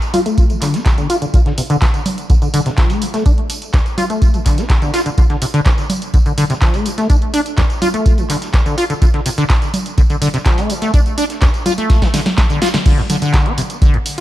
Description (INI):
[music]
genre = acid house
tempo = 125 BPM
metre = 4/4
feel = straight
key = D minor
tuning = A4 = 440 Hz
[part]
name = punchy analog drum machine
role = drums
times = 0.0-14.2 s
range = congas, crash cymbal, handclaps, hi-hat, snare drum, tambourine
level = -22 LUFS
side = right 1 dB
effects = analog delay
[part]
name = acid bass, saw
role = riff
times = 0.1-14.2 s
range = D2 to F4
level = -18 LUFS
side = left 1 dB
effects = lush chorus, sidechain pumping, analog delay
[part]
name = dusty soul sampler-style drum kit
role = drums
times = 0.1-14.2 s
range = hi-hat, snare drum, tambourine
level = -33 LUFS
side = equal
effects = none
[part]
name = electronic kick drum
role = drums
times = 0.4-13.9 s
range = none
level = -13 LUFS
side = equal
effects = none
[sound]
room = light reverb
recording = echo-heavy mix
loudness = -12 LUFS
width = side -14 dB against mid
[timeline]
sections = 0.0-12.9 A section; 12.9-14.2 B section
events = filter sweep on acid bass 0.0-12.9; drum fill 11.9-12.9; band accent 12.7; drop 12.9-14.2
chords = none